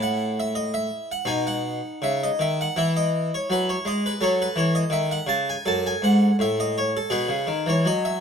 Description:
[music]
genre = classical, baroque-style suite movement for harpsichord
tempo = 82 BPM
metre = 4/4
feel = rubato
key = unclear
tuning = A4 = 438 Hz
[part]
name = harpsichord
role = solo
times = 0.0-8.2 s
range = F#2 to A5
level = -21 LUFS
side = equal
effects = none
[sound]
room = moderate stone room reverb, RT60 1.3 s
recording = close, detailed microphones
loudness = -21 LUFS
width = side -7 dB against mid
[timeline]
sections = 0.0-8.2 A section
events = none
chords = 0.0 F#m7/A; 1.3 B; 2.8 E; 4.2 F#m; 5.7 F#madd9; 7.1 G#m/B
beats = 0.55 | 1.28 2.01 2.75 3.49 | 4.21 4.92 5.66 6.39 | 7.12 7.84

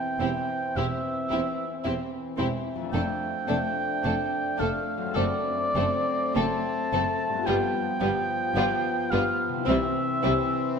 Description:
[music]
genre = classical, slow romantic movement for symphony orchestra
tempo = 54 BPM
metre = 4/4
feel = rubato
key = C major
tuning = A4 = 439 Hz
[part]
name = mellow oboe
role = second line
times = 0.0-10.8 s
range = D5 to A5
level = -28 LUFS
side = right 2 dB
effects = none
[part]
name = clear French horn section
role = sustained chords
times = 0.0-10.8 s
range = E3 to D4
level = -31 LUFS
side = left 3 dB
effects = none
[part]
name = concert harp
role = arpeggios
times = 0.0-10.8 s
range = E2 to A4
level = -36 LUFS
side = left 5 dB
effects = none
[part]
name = rich studio violin section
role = melody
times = 0.2-10.3 s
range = E4 to A4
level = -37 LUFS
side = left 5 dB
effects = none
[part]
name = rich studio violin section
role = second line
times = 0.2-10.3 s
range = B3 to E4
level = -34 LUFS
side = left 2 dB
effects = none
[part]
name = warm studio viola section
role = accompaniment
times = 0.2-10.3 s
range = G3 to C4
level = -33 LUFS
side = right 1 dB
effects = none
[part]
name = warm studio cello section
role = bass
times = 0.2-10.3 s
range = E2 to C3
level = -34 LUFS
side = right 2 dB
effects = none
[part]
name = warm studio double bass section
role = bass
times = 0.2-10.3 s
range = E1 to C2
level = -36 LUFS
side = right 4 dB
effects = none
[sound]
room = wet scoring stage reverb, RT60 1.8 s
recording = none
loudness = -24 LUFS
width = side -6 dB against mid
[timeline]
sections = 0.0-10.8 A section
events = none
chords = 0.0 C/E; 2.9 Dm/F; 5.2 D7/F#; 7.5 G7; 9.7 C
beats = 0.77 1.85 | 2.94 4.04 5.16 6.36 | 7.47 8.56 9.68

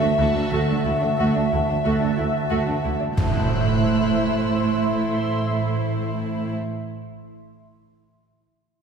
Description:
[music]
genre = cinematic, suspense film score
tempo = 91 BPM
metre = 4/4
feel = straight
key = unclear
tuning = A4 = 440 Hz
[part]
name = warm chamber violin section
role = melody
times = 0.0-6.5 s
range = C5 to E5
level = -31 LUFS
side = left 5 dB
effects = none
[part]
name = warm chamber violin section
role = second line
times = 0.0-6.5 s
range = D4 to F#4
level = -30 LUFS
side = equal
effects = none
[part]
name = warm chamber viola section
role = accompaniment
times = 0.0-6.5 s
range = A3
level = -26 LUFS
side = right 3 dB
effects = none
[part]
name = bubbling stepped-filter texture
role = sustained chords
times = 0.0-6.5 s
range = E4 to C6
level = -26 LUFS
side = equal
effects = chorus, built-in reverb
[part]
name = marimba with medium hard mallets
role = riff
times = 0.0-3.0 s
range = D3 to D4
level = -28 LUFS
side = right 2 dB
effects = none
[part]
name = dark chamber cello section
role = bass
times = 0.0-6.5 s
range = D2 to A2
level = -27 LUFS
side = right 5 dB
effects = none
[part]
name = dark chamber double bass section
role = bass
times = 0.2-6.5 s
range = A1 to D2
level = -30 LUFS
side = right 1 dB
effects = none
[part]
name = taiko ensemble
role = drums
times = 3.2-3.3 s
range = none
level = -26 LUFS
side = equal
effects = none
[part]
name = impact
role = sound effects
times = 3.2-7.3 s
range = none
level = -28 LUFS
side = equal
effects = none
[part]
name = warm studio violin section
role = texture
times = 3.2-5.4 s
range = E6 to G6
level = -36 LUFS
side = left 2 dB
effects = none
[sound]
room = wet scoring stage reverb, RT60 2.0 s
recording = heard from further back in the room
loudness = -20 LUFS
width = side -6 dB against mid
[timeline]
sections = 0.0-3.2 A section; 3.2-5.8 B section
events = impact 3.2-5.8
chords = 0.0 Dadd9; 3.2 Am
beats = | 0.51 1.18 1.84 2.51 | 3.17 3.82 4.47 5.12

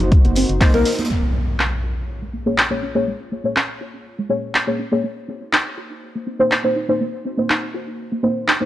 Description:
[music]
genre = deep house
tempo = 122 BPM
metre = 4/4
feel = swing 53% on 16ths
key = Bb minor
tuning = A4 = 440 Hz
[part]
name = warm analog pad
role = sustained chords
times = 0.0-8.7 s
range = Bb3 to Db5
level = -33 LUFS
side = left 1 dB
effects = chorus, sidechain pumping
[part]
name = deep mellow chord stab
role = stabs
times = 0.0-8.7 s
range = Bb3 to Db5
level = -20 LUFS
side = left 1 dB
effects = chorus, tape echo
[part]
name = organ-like FM bass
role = bass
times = 0.0-0.8 s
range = Gb1 to C2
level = -21 LUFS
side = equal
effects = sidechain pumping
[part]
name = punchy analog drum machine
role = drums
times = 0.0-8.6 s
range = handclaps, hi-hat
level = -19 LUFS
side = equal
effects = none
[part]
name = congas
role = percussion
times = 0.0-1.1 s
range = none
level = -27 LUFS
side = right 3 dB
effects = none
[part]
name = electronic kick drum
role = drums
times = 0.1-0.7 s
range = none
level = -13 LUFS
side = equal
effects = none
[part]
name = soft round pluck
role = arpeggios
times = 0.2-8.5 s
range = Ab3 to Gb4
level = -27 LUFS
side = right 2 dB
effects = ensemble chorus, vintage 12-bit sampler grit, sidechain pumping, tape echo
[part]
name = soft-mallet drum kit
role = drums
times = 0.4-1.1 s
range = hi-hat, snare drum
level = -33 LUFS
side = right 2 dB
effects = sidechain pumping on hats, high-pass filter on hats, high-pass filter on snare, high-pass filter on room
[part]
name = impact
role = sound effects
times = 1.1-3.1 s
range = none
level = -23 LUFS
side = equal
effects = none
[sound]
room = small room ambience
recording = dry, gritty hardware recording, cassette tape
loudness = -17 LUFS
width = side -13 dB against mid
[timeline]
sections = 0.0-1.1 A section; 1.1-8.7 B section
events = impact 1.1-3.1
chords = 0.0 Cm7b5; 1.1 Bbm7; 5.0 Cm7b5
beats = 0.12 0.61 | 1.10 1.59 2.08 2.58 | 3.07 3.56 4.05 4.54 | 5.04 5.53 6.02 6.51 | 7.00 7.50 7.99 8.48

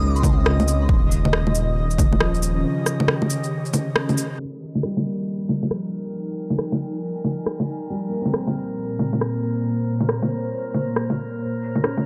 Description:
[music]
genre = future garage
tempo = 137 BPM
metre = 4/4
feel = swing 62% on 16ths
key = F minor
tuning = A4 = 439 Hz
[part]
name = felt-muted upright piano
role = accompaniment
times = 0.0-12.1 s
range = Db3 to Eb4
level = -32 LUFS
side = equal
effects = vintage 12-bit sampler grit, sidechain pumping, analog delay
[part]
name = ethereal airy pad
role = sustained chords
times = 0.0-12.1 s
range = Bb2 to Ab5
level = -30 LUFS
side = equal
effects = ensemble chorus, built-in reverb, phaser, sidechain pumping
[part]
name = dark detuned saw bass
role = bass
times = 0.0-2.6 s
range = Eb1 to Db2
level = -24 LUFS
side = equal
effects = sidechain pumping
[part]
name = drifting glass-harmonics texture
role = texture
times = 0.0-12.1 s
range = Bb4 to Eb5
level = -37 LUFS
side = equal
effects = chorus, built-in reverb
[part]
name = electronic kick drum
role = drums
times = 0.2-2.1 s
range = none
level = -23 LUFS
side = equal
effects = overdrive
[part]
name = electronic shaker, bongos, cabasa and rim click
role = drums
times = 0.2-12.0 s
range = none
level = -24 LUFS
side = equal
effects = overdrive
[sound]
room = light reverb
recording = dry, gritty hardware recording, transformer saturation, low-pass filter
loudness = -23 LUFS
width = mono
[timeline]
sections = 0.0-4.4 A section; 4.4-12.1 B section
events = filter sweep on felt piano 0.0-4.4; break 2.6-4.4; band accent 4.0; filter sweep on ambient pad 4.4-12.1; filter sweep 4.4-12.1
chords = 0.0 Dbmaj9; 0.9 Eb7; 4.4 Fm9; 7.9 Bbm9; 11.4 Dbmaj7(no3)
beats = 0.02 0.45 | 0.89 1.33 1.77 2.21 | 2.64 3.08 3.52 3.96 | 4.40 4.83 5.27 5.71 | 6.15 6.59 7.02 7.46 | 7.90 8.34 8.78 9.21 | 9.65 10.09 10.53 10.96 | 11.40 11.84

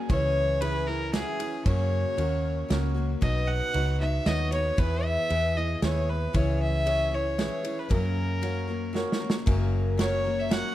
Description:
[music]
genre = honky-tonk and classic country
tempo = 115 BPM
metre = 3/4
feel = straight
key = unclear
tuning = A4 = 440 Hz
[part]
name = picked steel-string acoustic guitar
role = accompaniment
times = 0.0-10.7 s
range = F#2 to A#4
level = -32 LUFS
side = left 3 dB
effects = none
[part]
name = clear fiddle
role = melody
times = 0.1-10.7 s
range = G#4 to F#5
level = -29 LUFS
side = equal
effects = none
[part]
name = vintage muted fingered electric bass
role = bass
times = 0.1-10.6 s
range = F#1 to F#2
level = -28 LUFS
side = equal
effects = none
[part]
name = natural country drum kit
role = drums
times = 0.1-10.6 s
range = kick drum, ride cymbal, snare drum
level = -29 LUFS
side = right 1 dB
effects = none
[part]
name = clear concert grand piano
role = accompaniment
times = 0.6-10.7 s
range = C#4 to C#5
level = -39 LUFS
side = right 5 dB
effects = none
[sound]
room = light reverb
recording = dark, warm production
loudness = -24 LUFS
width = side -14 dB against mid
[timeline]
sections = 0.0-9.5 A section; 9.5-10.7 B section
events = drum fill 8.9-9.5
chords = 0.1 C#m; 1.7 F#; 3.2 B; 4.8 E; 6.3 C#m; 7.9 F#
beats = | 0.10 0.62 1.14 | 1.66 2.18 2.70 | 3.22 3.74 4.26 | 4.78 5.30 5.82 | 6.34 6.87 7.39 | 7.91 8.43 8.95 | 9.47 9.99 10.51

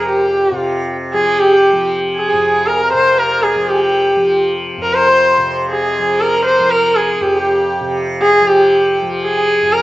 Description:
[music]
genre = indian classical, Hindustani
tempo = 118 BPM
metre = 7/4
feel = straight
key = F raga darbari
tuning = A4 = 441 Hz
[part]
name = rich sarangi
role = melody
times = 0.0-9.8 s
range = G4 to C5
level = -12 LUFS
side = equal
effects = none
[part]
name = hand-pumped harmonium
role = second line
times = 0.0-9.8 s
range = G4 to C5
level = -20 LUFS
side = right 2 dB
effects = slapback echo
[part]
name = tanpura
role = drone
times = 0.0-9.8 s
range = F2 to F3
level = -22 LUFS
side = left 1 dB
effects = none
[sound]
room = light reverb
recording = recorded outdoors, with no room sound, nothing above 7.9 kHz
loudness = -11 LUFS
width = side -16 dB against mid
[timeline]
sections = 0.0-9.8 A section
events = none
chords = none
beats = | 0.12 0.63 1.14 1.65 2.15 2.66 3.17 | 3.68 4.19 4.69 5.20 5.71 6.21 6.71 | 7.22 7.72 8.23 8.73 9.23 9.74

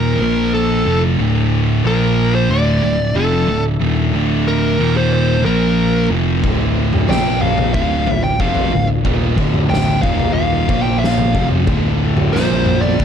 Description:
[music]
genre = stoner and doom metal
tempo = 92 BPM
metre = 4/4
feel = straight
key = D minor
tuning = A4 = 440 Hz
[part]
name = fuzz lead guitar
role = melody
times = 0.0-13.0 s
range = A4 to G5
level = -21 LUFS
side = equal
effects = distortion, analog delay
[part]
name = mellow tonewheel organ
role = sustained chords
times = 0.0-13.0 s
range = D3 to E5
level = -30 LUFS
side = left 1 dB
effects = none
[part]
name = thick fuzz guitar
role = riff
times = 0.0-13.0 s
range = D2 to Bb3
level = -21 LUFS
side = left 11 dB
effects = distortion
[part]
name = thick fuzz guitar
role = riff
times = 0.0-13.0 s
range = D2 to Bb3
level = -20 LUFS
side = right 10 dB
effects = distortion
[part]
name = picked electric bass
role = bass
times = 0.0-13.0 s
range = D1 to Bb1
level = -19 LUFS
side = equal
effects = overdrive
[part]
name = crunchy overdriven guitar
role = riff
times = 6.4-13.0 s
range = D2 to Bb3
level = -24 LUFS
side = equal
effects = none
[part]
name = oversized low-tuned drum kit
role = drums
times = 6.4-13.0 s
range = kick drum, snare drum, toms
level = -18 LUFS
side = left 1 dB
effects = none
[sound]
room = light reverb, small room reverb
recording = none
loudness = -13 LUFS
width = side -8 dB against mid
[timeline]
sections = 0.0-13.0 A section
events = none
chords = 0.2 Bb5; 0.9 Dm; 1.8 Bb5; 2.5 Dm; 4.8 Eb5; 5.5 Bb5; 6.1 Dm; 7.1 Bb5; 7.7 Dm; 10.0 Eb5; 10.7 Bb5; 11.4 Dm; 12.3 Bb5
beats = 0.54 | 1.19 1.85 2.50 3.16 | 3.81 4.47 5.12 5.78 | 6.44 7.09 7.75 8.40 | 9.06 9.72 10.37 11.03 | 11.69 12.34 13.00

